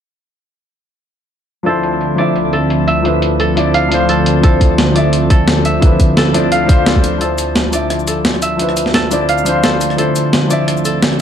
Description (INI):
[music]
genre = liquid drum and bass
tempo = 173 BPM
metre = 4/4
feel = swing 53% on 16ths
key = unclear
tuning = A4 = 440 Hz
[part]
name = warm concert grand piano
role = accompaniment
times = 1.6-11.2 s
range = F3 to E5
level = -17 LUFS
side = left 2 dB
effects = low-pass filter, ping-pong delay
[part]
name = lush unison pad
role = sustained chords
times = 1.7-11.2 s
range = D2 to E4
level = -16 LUFS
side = right 1 dB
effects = chorus
[part]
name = concert harp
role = arpeggios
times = 1.7-11.2 s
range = A4 to F5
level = -19 LUFS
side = right 2 dB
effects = vintage 12-bit sampler grit, low-pass filter, ping-pong delay
[part]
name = breakbeat sampler-style drum kit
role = drums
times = 1.7-11.2 s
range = cabasa, hi-hat, rim click, snare drum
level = -17 LUFS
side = equal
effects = overdrive, low-pass filter on hats, low-pass filter on snare, low-pass filter on perc, low-pass filter on room
[part]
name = electronic kick drum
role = drums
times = 4.4-7.0 s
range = none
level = -10 LUFS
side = equal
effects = none
[sound]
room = light reverb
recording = dark, warm production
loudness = -11 LUFS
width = side -8 dB against mid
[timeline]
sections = 1.7-7.2 A section; 7.2-11.2 B section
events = filter sweep on drum 1.7-7.2; build-up 7.2-11.2; filter sweep on grand piano 7.2-11.2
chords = 1.7 Dm9